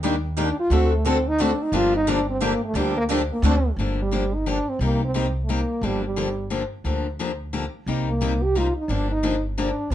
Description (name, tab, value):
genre	acoustic string swing (jazz manouche)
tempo	176 BPM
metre	3/4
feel	swing 61% on 8ths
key	G minor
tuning	A4 = 440 Hz
part	picked steel-string acoustic guitar	accompaniment	0.0-9.9 s	C3 to A4	-26 LUFS	left 4 dB	none
part	picked swing-style acoustic guitar	accompaniment	0.0-3.5, 9.9 s	D3 to A4	-30 LUFS	right 7 dB	none
part	upright bass	bass	0.0-9.9 s	G1 to Eb2	-25 LUFS	equal	none
part	mellow French horn	melody	0.4-9.9 s	G3 to G4	-24 LUFS	right 1 dB	none
room	light reverb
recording	dark, warm production, nothing above 10.9 kHz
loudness	-20 LUFS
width	side -12 dB against mid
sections	0.0-3.8 A section; 3.8-9.9 B section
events	French horn solo 0.0-3.8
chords	0.0 Ebmaj7; 0.7 D7; 1.7 Gm7; 3.4 D7; 3.8 Gm7; 4.8 Cm7; 5.8 Gm7; 7.9 Cm7; 8.9 Gm7